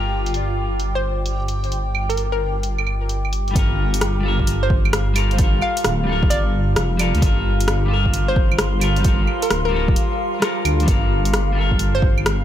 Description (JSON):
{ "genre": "future garage", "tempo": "131 BPM", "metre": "4/4", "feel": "swing 66% on 16ths", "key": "G minor", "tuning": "A4 = 441 Hz", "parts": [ { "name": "clean electric guitar", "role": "accompaniment", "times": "0.0-12.4 s", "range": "G3 to Bb4", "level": "-25 LUFS", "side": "left 2 dB", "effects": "sidechain pumping, dub echo" }, { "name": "granular cloud pad", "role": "sustained chords", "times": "0.0-12.4 s", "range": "F5 to D6", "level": "-29 LUFS", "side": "equal", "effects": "built-in reverb, sidechain pumping" }, { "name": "dark detuned saw bass", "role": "bass", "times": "0.0-12.4 s", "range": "D1 to D2", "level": "-20 LUFS", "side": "equal", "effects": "tube saturation, sidechain pumping" }, { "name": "backwards swelling texture", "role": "texture", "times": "0.0-3.6 s", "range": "F4 to G5", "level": "-35 LUFS", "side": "right 1 dB", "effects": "built-in reverb" }, { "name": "deep house drum kit", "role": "drums", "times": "0.3-12.4 s", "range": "claves, hi-hat, rim click", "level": "-24 LUFS", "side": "equal", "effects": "low-pass filter on hats, studio reverb, low-pass filter on perc, low-pass filter on snare" }, { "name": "hollow square pluck", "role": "melody", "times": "1.0-12.2 s", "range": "Bb4 to F5", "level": "-28 LUFS", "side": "equal", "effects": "chorus, dub echo" }, { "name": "electronic kick drum", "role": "drums", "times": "3.6-12.1 s", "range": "none", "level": "-19 LUFS", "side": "equal", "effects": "studio reverb" } ], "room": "light reverb, digital ambience", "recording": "none", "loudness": "-17 LUFS", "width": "side -11 dB against mid", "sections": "0.0-3.6 A section; 3.6-12.4 B section", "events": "filter sweep on ambient pad 0.0-3.6", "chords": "0.0 Gm7; 3.6 Gm9" }